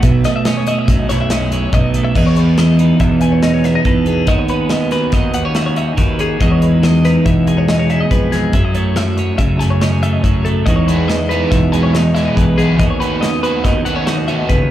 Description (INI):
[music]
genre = math rock and midwest emo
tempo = 141 BPM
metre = 5/4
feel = straight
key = E major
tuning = A4 = 441 Hz
[part]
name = twelve-string electric guitar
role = accompaniment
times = 0.0-14.7 s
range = E2 to A4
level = -16 LUFS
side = right 3 dB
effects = none
[part]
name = twelve-string electric guitar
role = arpeggios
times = 0.0-14.7 s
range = G#4 to G#5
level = -21 LUFS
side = left 4 dB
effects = slapback echo
[part]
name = fuzz fingered electric bass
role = bass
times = 0.0-14.7 s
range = B1 to F#2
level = -17 LUFS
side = left 1 dB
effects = overdrive
[part]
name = modern studio drum kit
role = drums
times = 0.0-14.6 s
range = crash cymbal, hi-hat, kick drum, snare drum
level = -18 LUFS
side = left 1 dB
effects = none
[part]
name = crunchy overdriven guitar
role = riff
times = 10.9-14.6 s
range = D#3 to F#4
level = -21 LUFS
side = equal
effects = slapback echo
[sound]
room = studio reverb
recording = live gig heard through the venue's PA, club reverb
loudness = -12 LUFS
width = side -12 dB against mid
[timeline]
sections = 0.0-2.2 A section; 2.2-14.7 B section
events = none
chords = 0.0 B9sus4; 2.2 Emaj7; 4.3 Badd9/D#; 6.4 Emaj9; 8.5 F#m7; 10.7 Emaj9; 12.8 B9/D#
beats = | 0.04 0.46 0.89 1.31 1.73 | 2.16 2.58 3.00 3.43 3.86 | 4.28 4.71 5.13 5.56 5.98 | 6.41 6.83 7.26 7.69 8.11 | 8.54 8.96 9.39 9.82 10.24 | 10.67 11.09 11.52 11.95 12.37 | 12.80 13.22 13.65 14.07 14.50